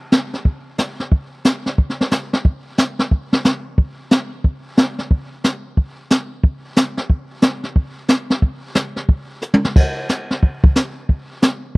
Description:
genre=jazz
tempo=180 BPM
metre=4/4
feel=swing 63% on 8ths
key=none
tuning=none
part: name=jazz brush drum kit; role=drums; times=0.1-11.8 s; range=brushed snare drum, crash cymbal, hi-hat, kick drum, snare drum, toms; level=-14 LUFS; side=equal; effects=none
room=little or no reverb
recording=dry, close 1970s-style studio recording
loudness=-16 LUFS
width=side -31 dB against mid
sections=0.0-9.8 A section; 9.8-11.8 B section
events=drum fill 9.4-9.8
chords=none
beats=0.12 | 0.46 0.79 1.12 1.45 | 1.78 2.12 2.45 2.78 | 3.11 3.45 3.78 4.11 | 4.44 4.78 5.11 5.44 | 5.77 6.11 6.44 6.77 | 7.10 7.43 7.77 8.10 | 8.43 8.76 9.10 9.43 | 9.76 10.09 10.42 10.76 | 11.09 11.42 11.75

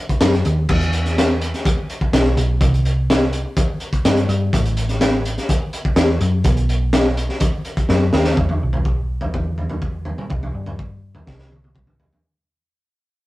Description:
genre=psychedelic rock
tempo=125 BPM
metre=4/4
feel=straight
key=E harmonic minor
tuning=A4 = 440 Hz
part: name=crunchy breakbeat drum kit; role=drums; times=0.1-12.2 s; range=crash cymbal, hi-hat, kick drum, snare drum, toms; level=-18 LUFS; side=equal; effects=none
part: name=hollow-body short-scale picked electric bass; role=bass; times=0.2-12.1 s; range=A1 to G2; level=-19 LUFS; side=equal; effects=none
room=light reverb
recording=rough rehearsal-room recording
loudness=-16 LUFS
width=side -17 dB against mid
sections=0.0-8.4 A section; 8.4-12.2 B section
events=drum fill 7.9-8.4, 11.3-12.2; fade-out 8.4-12.2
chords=none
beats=0.21 | 0.69 1.17 1.65 2.13 | 2.61 3.09 3.57 4.05 | 4.53 5.01 5.49 5.97 | 6.45 6.93 7.41 7.89 | 8.38 8.86 9.34 9.82 | 10.30 10.79 11.27 11.76

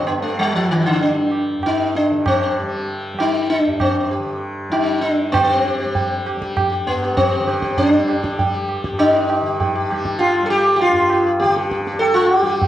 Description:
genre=indian classical, Hindustani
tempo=98 BPM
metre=4/4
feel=straight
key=unclear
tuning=A4 = 440 Hz
part: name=sitar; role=melody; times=0.0-12.7 s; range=D3 to A4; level=-17 LUFS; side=left 1 dB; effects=none
part: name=tanpura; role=drone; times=0.0-12.7 s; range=G2 to G3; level=-26 LUFS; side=equal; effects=none
part: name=tabla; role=percussion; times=0.1-12.7 s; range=none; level=-22 LUFS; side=right 2 dB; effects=none
room=wet recital hall reverb, RT60 1.3 s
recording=worn, warbling old tape, cassette tape, warbly pitch drift, nothing above 10.4 kHz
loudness=-16 LUFS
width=side -12 dB against mid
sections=0.0-5.3 A section; 5.3-12.7 B section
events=speeding up 0.0-12.7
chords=none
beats=| 0.38 1.00 1.63 2.25 | 2.87 3.49 4.11 4.73 | 5.34 5.96 6.57 7.18 | 7.79 8.39 9.00 9.60 | 10.21 10.80 11.40 12.00 | 12.60

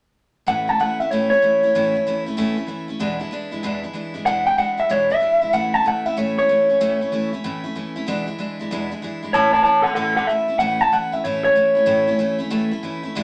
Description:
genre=rock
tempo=189 BPM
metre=4/4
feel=swing 64% on 8ths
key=A major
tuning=A4 = 441 Hz
part: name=electric guitar through a small old amp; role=melody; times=0.5-2.2, 4.3-7.3, 9.3-12.4 s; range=A4 to A5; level=-19 LUFS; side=equal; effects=none
part: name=picked steel-string acoustic guitar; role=accompaniment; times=0.5-13.2 s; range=E2 to E4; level=-27 LUFS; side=equal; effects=none
room=moderate studio reverb, RT60 0.6 s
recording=none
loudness=-20 LUFS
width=mono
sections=0.5-10.6 A section; 10.6-13.2 A section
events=none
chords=0.5 A; 3.0 E7; 5.5 A; 8.1 E7; 9.3 A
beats=| 0.47 0.79 1.10 1.42 | 1.74 2.05 2.37 2.68 | 3.00 3.32 3.63 3.95 | 4.27 4.59 4.90 5.22 | 5.54 5.86 6.17 6.49 | 6.81 7.12 7.44 7.76 | 8.08 8.39 8.71 9.03 | 9.35 9.66 9.98 10.30 | 10.61 10.93 11.25 11.56 | 11.88 12.20 12.52 12.83 | 13.15

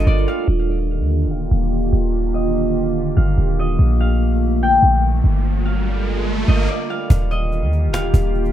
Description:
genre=hip hop, atmospheric cloud-rap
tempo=145 BPM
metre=4/4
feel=half-time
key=unclear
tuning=A4 = 441 Hz
part: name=Celtic harp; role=melody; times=0.0-8.5 s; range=D5 to G5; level=-24 LUFS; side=left 3 dB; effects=low-pass filter, ping-pong delay
part: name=glassy FM pad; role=sustained chords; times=0.0-8.5 s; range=D3 to Bb4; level=-22 LUFS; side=equal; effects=ensemble chorus, built-in reverb, low-pass filter
part: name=clean 808-style bass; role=bass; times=0.0-8.5 s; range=Eb1 to Eb2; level=-17 LUFS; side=equal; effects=none
part: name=cajon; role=drums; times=0.1-0.3, 7.1-8.5 s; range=none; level=-23 LUFS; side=equal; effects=none
part: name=riser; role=sound effects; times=5.0-6.7 s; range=none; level=-27 LUFS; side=right 4 dB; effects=none
room=light reverb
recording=none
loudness=-16 LUFS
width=side -11 dB against mid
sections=0.5-7.1 A section; 7.1-8.5 B section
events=filter sweep 0.5-7.1; riser 5.0-7.1; stop 6.7-7.1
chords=0.5 Ebmaj7; 3.8 Bbmaj7; 5.4 Gm7; 7.1 Ebmaj7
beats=0.07 | 0.48 0.90 1.31 1.72 | 2.14 2.55 2.96 3.38 | 3.79 4.21 4.62 5.03 | 5.45 5.86 6.28 6.69 | 7.10 7.52 7.93 8.34

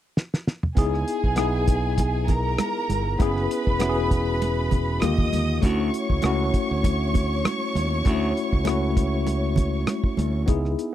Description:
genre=lush 1970s-style soul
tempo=99 BPM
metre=4/4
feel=swing 54% on 16ths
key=unclear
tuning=A4 = 440 Hz
part: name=cloth-damped thuddy drum kit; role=drums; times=0.2-10.9 s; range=hi-hat, kick drum, rim click, snare drum, toms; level=-24 LUFS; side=equal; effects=none
part: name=rich studio violin section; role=second line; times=0.8-10.4 s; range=G#4 to D#6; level=-29 LUFS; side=right 1 dB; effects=none
part: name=tine electric piano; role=accompaniment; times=0.8-10.9 s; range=D3 to G#4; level=-26 LUFS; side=left 3 dB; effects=medium stereo tremolo
part: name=modern bright fingered electric bass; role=bass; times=0.8-10.7 s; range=E1 to D#2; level=-25 LUFS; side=equal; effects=none
part: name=congas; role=percussion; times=0.8-10.6 s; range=none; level=-29 LUFS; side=right 6 dB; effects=none
room=little or no reverb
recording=dry, close 1970s-style studio recording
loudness=-21 LUFS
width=side -12 dB against mid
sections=0.8-10.5 A section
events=drum fill 0.2-0.8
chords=0.0 N.C.; 0.8 C#m7 (rootless); 3.2 F#9sus4; 5.0 D#maj7; 5.6 Dmaj7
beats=0.17 | 0.77 1.38 1.99 2.60 | 3.20 3.81 4.42 5.02 | 5.63 6.24 6.84 7.45 | 8.06 8.66 9.27 9.88 | 10.48

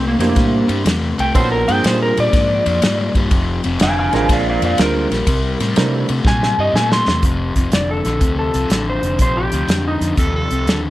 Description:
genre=electric blues shuffle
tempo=122 BPM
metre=4/4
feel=swing 67% on 8ths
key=unclear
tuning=A4 = 439 Hz
part: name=electric slide guitar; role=melody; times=0.0-10.1 s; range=Bb3 to C6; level=-19 LUFS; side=equal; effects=none
part: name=overdriven semi-hollow guitar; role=riff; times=0.0-10.9 s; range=F2 to A3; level=-21 LUFS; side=left 3 dB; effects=none
part: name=vintage muted fingered electric bass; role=bass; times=0.0-10.9 s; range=F1 to C3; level=-21 LUFS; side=equal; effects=none
part: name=clear upright piano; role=accompaniment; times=0.2-6.1 s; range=G3 to Bb4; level=-22 LUFS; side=right 5 dB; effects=none
part: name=warm soul drum kit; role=drums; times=0.2-10.8 s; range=hi-hat, kick drum, ride cymbal, snare drum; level=-19 LUFS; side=equal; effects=none
part: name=overdriven harmonica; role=second line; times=10.2-10.8 s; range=A4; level=-23 LUFS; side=right 3 dB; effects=none
room=moderate small room reverb, RT60 0.6 s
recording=lossy compression artefacts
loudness=-14 LUFS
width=side -15 dB against mid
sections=0.0-7.2 A section; 7.2-10.9 B section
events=electric slide guitar solo 0.0-7.2; drum fill 6.2-7.2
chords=0.0 C7; 1.3 Bb7; 3.3 F; 4.3 Bb7; 5.3 C7; 7.2 F7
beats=0.37 0.86 | 1.35 1.84 2.33 2.82 | 3.31 3.80 4.29 4.78 | 5.27 5.76 6.25 6.74 | 7.23 7.72 8.21 8.71 | 9.20 9.69 10.18 10.68

